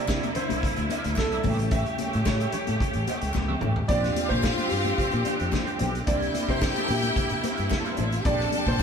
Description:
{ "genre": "disco", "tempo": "110 BPM", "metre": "4/4", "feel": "straight", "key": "unclear", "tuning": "A4 = 441 Hz", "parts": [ { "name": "warm concert grand piano", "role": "melody", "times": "0.0-8.8 s", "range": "G4 to E5", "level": "-31 LUFS", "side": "right 2 dB", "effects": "none" }, { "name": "electric guitar at the edge of break-up", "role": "accompaniment", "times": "0.0-8.8 s", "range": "D4 to G5", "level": "-36 LUFS", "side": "right 2 dB", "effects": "wah, tremolo" }, { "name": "mellow tine electric piano", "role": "accompaniment", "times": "0.0-8.8 s", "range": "D3 to G4", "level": "-35 LUFS", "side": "left 2 dB", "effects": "medium stereo tremolo, tube saturation" }, { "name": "bright studio string section", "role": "sustained chords", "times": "0.0-8.8 s", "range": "C3 to G4", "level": "-31 LUFS", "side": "right 1 dB", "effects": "none" }, { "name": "fingered electric bass", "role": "bass", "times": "0.0-8.8 s", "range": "A1 to C3", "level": "-29 LUFS", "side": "left 1 dB", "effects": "none" }, { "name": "vintage drum kit", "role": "drums", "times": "0.1-8.8 s", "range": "hi-hat, kick drum, snare drum, toms", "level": "-29 LUFS", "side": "equal", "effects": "none" }, { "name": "group handclap", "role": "percussion", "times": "0.1-8.8 s", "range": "none", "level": "-44 LUFS", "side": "left 3 dB", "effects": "none" }, { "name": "congas", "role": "percussion", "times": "0.2-8.8 s", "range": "none", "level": "-35 LUFS", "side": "left 6 dB", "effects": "none" }, { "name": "clear studio string section", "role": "second line", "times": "3.9-8.8 s", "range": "A3 to A5", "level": "-30 LUFS", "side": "equal", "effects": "none" } ], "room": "moderate stone room reverb, RT60 1.3 s", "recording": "band playing live in one room", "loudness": "-23 LUFS", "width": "side -6 dB against mid", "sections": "0.0-3.9 A section; 3.9-8.8 B section", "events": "drum fill 3.4-3.9", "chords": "0.0 C9; 1.4 A7; 3.9 Bb69; 6.1 C7; 8.3 Bb69" }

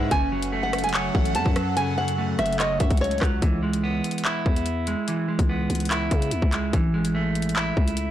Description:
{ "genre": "hip hop, drill", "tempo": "145 BPM", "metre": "4/4", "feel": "half-time", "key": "C# minor", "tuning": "A4 = 440 Hz", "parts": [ { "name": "nylon-string guitar", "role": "melody", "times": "0.0-3.2 s", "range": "C#5 to A5", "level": "-27 LUFS", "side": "right 1 dB", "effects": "digital delay" }, { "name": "clean electric guitar", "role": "accompaniment", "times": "0.0-8.1 s", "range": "C#3 to C#5", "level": "-27 LUFS", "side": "right 2 dB", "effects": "none" }, { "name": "airy breathy pad", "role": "sustained chords", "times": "0.0-3.4 s", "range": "F#3 to F#5", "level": "-30 LUFS", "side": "right 1 dB", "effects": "chorus" }, { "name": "growling 808-style bass", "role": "bass", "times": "0.0-8.1 s", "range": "F#1 to C#3", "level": "-28 LUFS", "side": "left 1 dB", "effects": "none" }, { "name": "drill drum kit", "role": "drums", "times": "0.1-8.1 s", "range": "handclaps, hi-hat, kick drum, rim click", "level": "-24 LUFS", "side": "equal", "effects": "none" } ], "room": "little or no reverb", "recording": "blown-out, overdriven recording, overdrive", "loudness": "-21 LUFS", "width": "side -12 dB against mid", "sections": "0.0-3.4 A section; 3.4-8.1 B section", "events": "none", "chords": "0.1 F#m; 3.4 C#m7; 6.7 Amaj7" }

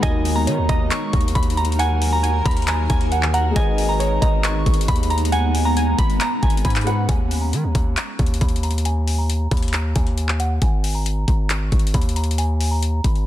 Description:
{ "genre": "hip hop, trap", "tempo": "136 BPM", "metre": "4/4", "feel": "half-time", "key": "Eb minor", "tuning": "A4 = 439 Hz", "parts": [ { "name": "soft synth bell", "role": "melody", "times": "0.0-13.2 s", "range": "Gb5 to Db6", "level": "-26 LUFS", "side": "equal", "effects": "chorus, low-pass filter, digital delay" }, { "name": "warbly dusty pluck", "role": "second line", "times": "0.0-7.1 s", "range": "Db5 to Cb6", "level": "-28 LUFS", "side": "right 4 dB", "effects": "chorus, digital delay" }, { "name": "felt-muted upright piano", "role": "accompaniment", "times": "0.0-7.1 s", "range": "Eb3 to Gb5", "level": "-30 LUFS", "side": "left 4 dB", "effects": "low-pass filter" }, { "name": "granular cloud pad", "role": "sustained chords", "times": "0.0-7.1 s", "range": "Eb3 to Bb4", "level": "-27 LUFS", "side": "equal", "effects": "built-in reverb" }, { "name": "distorted 808-style bass", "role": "bass", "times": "0.0-13.3 s", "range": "Ab1 to Eb3", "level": "-21 LUFS", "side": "equal", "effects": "distortion" }, { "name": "trap drum kit", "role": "drums", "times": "0.0-13.3 s", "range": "handclaps, hi-hat, kick drum", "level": "-21 LUFS", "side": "equal", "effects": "none" } ], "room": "little or no reverb", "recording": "dense, heavily limited modern master", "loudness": "-17 LUFS", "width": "side -13 dB against mid", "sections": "0.0-7.1 A section; 7.1-13.3 B section", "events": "filter sweep 7.1-13.3", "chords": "0.0 Ebm; 3.6 Abm; 7.1 Ebsus4; 10.6 Ab5" }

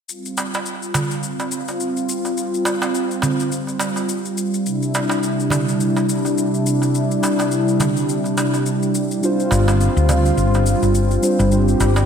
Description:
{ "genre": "organic downtempo", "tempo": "105 BPM", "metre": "4/4", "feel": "swing 58% on 16ths", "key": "unclear", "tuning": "A4 = 439 Hz", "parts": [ { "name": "warm analog pad", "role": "sustained chords", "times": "0.1-12.1 s", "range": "C3 to G4", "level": "-19 LUFS", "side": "equal", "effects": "chorus" }, { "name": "shaker", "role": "drums", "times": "0.1-12.1 s", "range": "none", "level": "-29 LUFS", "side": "left 5 dB", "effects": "overdrive" }, { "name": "darbuka", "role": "percussion", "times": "0.4-12.1 s", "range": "none", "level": "-25 LUFS", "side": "right 2 dB", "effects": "slapback echo" }, { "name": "muted felt-like synth keys", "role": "accompaniment", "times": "9.2-12.1 s", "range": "G3 to C5", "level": "-21 LUFS", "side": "right 1 dB", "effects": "chorus, ping-pong delay, slapback echo" }, { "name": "woody fretless electric bass", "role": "bass", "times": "9.5-12.1 s", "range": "G1 to D2", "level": "-16 LUFS", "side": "left 1 dB", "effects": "none" } ], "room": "moderate lush hall reverb, RT60 1.9 s", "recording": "big arena sound", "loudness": "-17 LUFS", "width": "side -7 dB against mid", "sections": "0.1-12.1 A section", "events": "none", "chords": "0.1 G7sus4; 4.7 C; 9.2 G7sus4" }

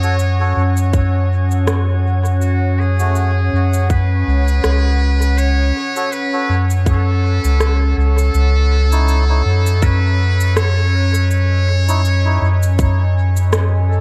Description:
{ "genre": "ambient dub", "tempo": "81 BPM", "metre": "4/4", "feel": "swing 56% on 16ths", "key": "unclear", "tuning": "A4 = 436 Hz", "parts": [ { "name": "trumpet with metal mute", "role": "melody", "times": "0.0-14.0 s", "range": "F#4 to C#5", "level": "-26 LUFS", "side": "equal", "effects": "dub echo" }, { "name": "deep dark ambient pad", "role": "sustained chords", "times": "0.0-14.0 s", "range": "C#4 to G#5", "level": "-27 LUFS", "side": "equal", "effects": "chorus, built-in reverb" }, { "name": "melodica", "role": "stabs", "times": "0.0-12.5 s", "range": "A3 to C#5", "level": "-29 LUFS", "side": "equal", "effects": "dub echo" }, { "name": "soft dub sub bass", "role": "bass", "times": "0.0-14.0 s", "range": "C#2 to F#2", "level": "-16 LUFS", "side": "equal", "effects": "none" }, { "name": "electronic cabasa and rim click", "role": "drums", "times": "0.0-13.7 s", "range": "none", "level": "-27 LUFS", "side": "equal", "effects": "dub echo" }, { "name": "drifting glass-harmonics texture", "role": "texture", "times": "0.0-8.4 s", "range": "C#4 to C#5", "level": "-36 LUFS", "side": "equal", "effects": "none" }, { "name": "electronic kick drum", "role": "drums", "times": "0.9-13.0 s", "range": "none", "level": "-19 LUFS", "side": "equal", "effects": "none" } ], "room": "digital ambience", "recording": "none", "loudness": "-15 LUFS", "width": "mono", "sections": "0.0-8.3 A section; 8.3-14.0 B section", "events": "none", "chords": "0.0 F#m; 8.3 C#madd9" }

